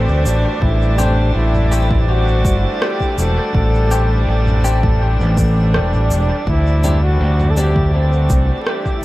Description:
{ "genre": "ambient dub", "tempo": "82 BPM", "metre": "4/4", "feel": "straight", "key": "A dorian", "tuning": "A4 = 441 Hz", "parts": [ { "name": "clear trombone", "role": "melody", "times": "0.0-9.0 s", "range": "C4 to A4", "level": "-22 LUFS", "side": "equal", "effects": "vintage 12-bit sampler grit, dub echo" }, { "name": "rich chamber string section", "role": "sustained chords", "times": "0.0-9.0 s", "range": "E3 to C5", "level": "-24 LUFS", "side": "equal", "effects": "none" }, { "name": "overdriven fingered electric bass", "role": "bass", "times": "0.0-8.5 s", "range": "E1 to D2", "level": "-15 LUFS", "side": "equal", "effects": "none" }, { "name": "drifting glass-harmonics texture", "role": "texture", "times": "0.0-9.0 s", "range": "D5", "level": "-28 LUFS", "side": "right 2 dB", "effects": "chorus, built-in reverb" }, { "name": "organic electronic drum kit", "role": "drums", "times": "0.3-8.8 s", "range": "rim click, shaker, toms", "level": "-24 LUFS", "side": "equal", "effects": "dub echo" }, { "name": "electronic kick drum", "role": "drums", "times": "0.6-9.0 s", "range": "none", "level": "-19 LUFS", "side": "equal", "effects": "none" }, { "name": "clean electric guitar", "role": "stabs", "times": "1.0-7.7 s", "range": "G3 to G4", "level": "-28 LUFS", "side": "left 3 dB", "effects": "dub echo" } ], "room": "light reverb", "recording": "vinyl crackle, lossy compression artefacts", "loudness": "-13 LUFS", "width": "side -17 dB against mid", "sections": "0.0-9.0 A section", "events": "none", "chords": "0.0 D7sus4; 0.6 Am7; 6.5 D7sus4", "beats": "| 0.62 1.35 2.08 2.82 | 3.55 4.28 5.01 5.74 | 6.47 7.21 7.94 8.67" }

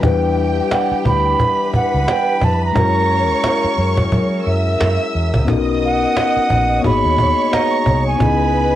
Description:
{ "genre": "lush 1970s-style soul", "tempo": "88 BPM", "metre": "4/4", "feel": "swing 58% on 16ths", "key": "unclear", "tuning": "A4 = 440 Hz", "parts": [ { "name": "rich studio violin section", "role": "second line", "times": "0.0-8.8 s", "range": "G4 to E6", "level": "-23 LUFS", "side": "right 1 dB", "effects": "cassette tape" }, { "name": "mellow tine electric piano", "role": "accompaniment", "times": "0.0-8.8 s", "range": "G3 to B4", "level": "-21 LUFS", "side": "left 7 dB", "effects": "medium stereo tremolo, cassette tape" }, { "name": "clear French horn section", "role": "sustained chords", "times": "0.0-8.8 s", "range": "C#3 to D#5", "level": "-27 LUFS", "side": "equal", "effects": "cassette tape" }, { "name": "vintage muted fingered electric bass", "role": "bass", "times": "0.0-8.8 s", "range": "G#1 to F#3", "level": "-19 LUFS", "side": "equal", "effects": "none" }, { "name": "cajon", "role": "drums", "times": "0.0-8.6 s", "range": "none", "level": "-19 LUFS", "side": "equal", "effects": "none" }, { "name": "electric guitar through a small old amp", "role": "riff", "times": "0.7-7.8 s", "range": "E4 to F#5", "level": "-22 LUFS", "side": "right 9 dB", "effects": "cassette tape" }, { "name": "concert flute", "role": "melody", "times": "1.1-8.8 s", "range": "F#5 to B5", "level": "-18 LUFS", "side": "right 3 dB", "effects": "none" } ], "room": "light reverb", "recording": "home recording on cassette", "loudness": "-14 LUFS", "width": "side -12 dB against mid", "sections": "0.0-8.8 A section", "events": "none", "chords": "0.0 Em9; 2.8 F#7; 5.5 Bmaj7; 6.8 G#m7; 8.2 C#m7", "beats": "| 0.03 0.71 1.40 2.08 | 2.76 3.44 4.12 4.80 | 5.48 6.16 6.84 7.52 | 8.20" }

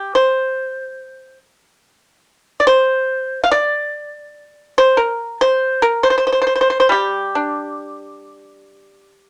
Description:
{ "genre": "chinese traditional, Chinese solo plucked strings", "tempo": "71 BPM", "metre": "4/4", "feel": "rubato", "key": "G yu mode", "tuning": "A4 = 440 Hz", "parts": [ { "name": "pipa", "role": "solo", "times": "0.0-9.3 s", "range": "G3 to F5", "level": "-17 LUFS", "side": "equal", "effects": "none" } ], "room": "light reverb", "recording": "none", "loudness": "-17 LUFS", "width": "mono", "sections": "0.0-9.3 A section", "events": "none", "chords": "none", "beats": "| 0.15 1.00 1.83 2.68 | 3.51 4.35 5.19 6.04 | 6.91 7.78 8.66" }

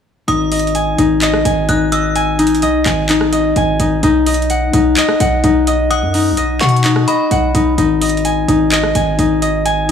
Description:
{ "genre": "hip hop, trap", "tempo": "128 BPM", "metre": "4/4", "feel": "half-time", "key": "G# minor", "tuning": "A4 = 440 Hz", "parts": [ { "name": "metallic FM bell", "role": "second line", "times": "0.3-2.1, 5.9-7.7 s", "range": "B5 to F#6", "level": "-21 LUFS", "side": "left 1 dB", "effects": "chorus, digital delay" }, { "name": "concert harp", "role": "arpeggios", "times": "0.3-9.9 s", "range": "D#4 to G#5", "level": "-14 LUFS", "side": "left 2 dB", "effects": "low-pass filter, digital delay" }, { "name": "distorted 808-style bass", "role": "bass", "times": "0.3-9.9 s", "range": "G#1 to B2", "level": "-17 LUFS", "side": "left 1 dB", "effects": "distortion" }, { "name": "trap drum kit", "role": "drums", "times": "0.3-9.9 s", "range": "handclaps, hi-hat, rim click", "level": "-20 LUFS", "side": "equal", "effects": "none" } ], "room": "light reverb", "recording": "studio ambience", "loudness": "-12 LUFS", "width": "side -7 dB against mid", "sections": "0.3-9.9 A section", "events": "none", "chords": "0.3 G#5; 4.0 B; 7.8 G#5", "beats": "| 0.28 0.75 1.22 1.69 | 2.16 2.62 3.09 3.56 | 4.03 4.50 4.97 5.44 | 5.91 6.38 6.84 7.31 | 7.78 8.25 8.72 9.19 | 9.66" }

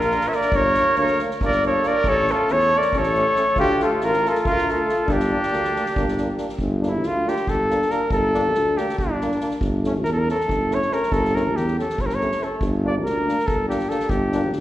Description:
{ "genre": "balkan folk, Balkan brass band", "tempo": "278 BPM (eighths)", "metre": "7/8", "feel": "straight", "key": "G dorian sharp4", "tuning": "A4 = 435 Hz", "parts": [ { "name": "warm flugelhorn", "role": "melody", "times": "0.0-14.5 s", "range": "D4 to E5", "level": "-21 LUFS", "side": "equal", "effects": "slapback echo" }, { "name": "warm trumpet", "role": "second line", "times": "0.0-6.4 s", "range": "D4 to C#5", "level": "-26 LUFS", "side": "right 1 dB", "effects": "slapback echo" }, { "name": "mellow tuba", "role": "bass", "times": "0.0-14.6 s", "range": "G1 to E2", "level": "-24 LUFS", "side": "equal", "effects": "none" }, { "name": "soft-mallet drum kit", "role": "percussion", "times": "0.0-14.6 s", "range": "kick drum, snare drum", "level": "-30 LUFS", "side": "equal", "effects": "none" }, { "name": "clear euphonium", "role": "accompaniment", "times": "0.1-14.4 s", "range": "A3 to Bb3", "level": "-31 LUFS", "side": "right 3 dB", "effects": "slapback echo" }, { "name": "clear trombone", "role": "accompaniment", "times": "0.1-14.4 s", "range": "C#4 to F4", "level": "-30 LUFS", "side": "left 4 dB", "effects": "slapback echo" } ], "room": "moderate club reverb, RT60 0.8 s", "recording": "live gig heard through the venue's PA, recital hall reverb", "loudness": "-18 LUFS", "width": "side -14 dB against mid", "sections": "0.0-6.6 A section; 6.6-14.6 B section", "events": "flugelhorn solo 6.6-14.6", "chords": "0.0 Bb; 0.5 Gm; 2.1 A; 3.6 Dm; 5.1 Gm; 9.6 A/G; 12.6 Gm", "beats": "0.10 0.32 | 0.53 0.75 0.97 1.19 1.40 1.62 1.84 | 2.05 2.27 2.49 2.70 2.92 3.14 3.35 | 3.57 3.79 4.00 4.22 4.44 4.65 4.87 | 5.08 5.30 5.52 5.73 5.95 6.17 6.38 | 6.60 6.81 7.03 7.25 7.46 7.68 7.89 | 8.11 8.33 8.54 8.76 8.97 9.19 9.40 | 9.62 9.83 10.05 10.26 10.48 10.69 10.90 | 11.12 11.33 11.55 11.76 11.97 12.19 12.40 | 12.61 12.83 13.04 13.25 13.46 13.68 13.89 | 14.10 14.31 14.53" }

